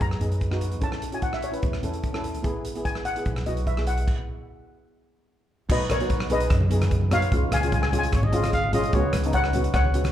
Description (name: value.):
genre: calypso.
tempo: 148 BPM.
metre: 4/4.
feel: straight.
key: B major.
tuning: A4 = 440 Hz.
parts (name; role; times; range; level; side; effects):
steel pan; melody; 0.0-10.1 s; A#4 to A#5; -28 LUFS; left 2 dB; slapback echo.
steel pan; accompaniment; 0.0-10.1 s; G#3 to B4; -29 LUFS; equal; slapback echo.
upright bass; bass; 0.0-10.1 s; G#1 to F#2; -26 LUFS; equal; none.
loose indie drum kit; drums; 0.0-10.1 s; crash cymbal, hi-hat, kick drum, rim click; -28 LUFS; equal; none.
congas; percussion; 5.9-10.1 s; none; -31 LUFS; equal; none.
breathy trumpet; second line; 8.1-9.2 s; C#5 to E#5; -29 LUFS; left 1 dB; slapback echo.
room: light reverb, small room ambience.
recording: live gig heard through the venue's PA, club reverb.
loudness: -22 LUFS.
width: side -11 dB against mid.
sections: 0.0-5.7 A section; 5.7-10.1 B section.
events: stop 4.1-5.7.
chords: 0.0 B; 0.8 A; 2.4 Eadd9/G#; 4.1 N.C.; 5.7 Badd9; 7.3 C#; 8.9 F#sus4/C#.